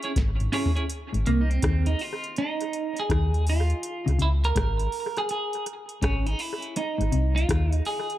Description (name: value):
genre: roots reggae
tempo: 82 BPM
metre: 4/4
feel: swing 64% on 16ths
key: Ab major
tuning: A4 = 441 Hz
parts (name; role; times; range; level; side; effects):
- clean electric guitar; accompaniment; 0.0-8.2 s; Bb3 to Db5; -28 LUFS; right 3 dB; harmonic tremolo, tape echo
- soft vintage rhythm box; drums; 0.0-8.2 s; hi-hat, kick drum, rim click, snare drum, toms; -29 LUFS; equal; analog delay
- mellow electric guitar; riff; 0.2-7.7 s; Ab2 to Eb3; -29 LUFS; left 4 dB; none
- soft dub sub bass; bass; 0.2-7.8 s; Ab1 to Eb2; -24 LUFS; equal; none
room: light reverb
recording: none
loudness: -23 LUFS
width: side -14 dB against mid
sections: 0.9-8.2 A section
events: drum fill 0.2-0.9; clean electric guitar solo 0.9-8.2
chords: 0.0 Dbm; 0.9 Ab; 3.8 Db5; 6.8 Ab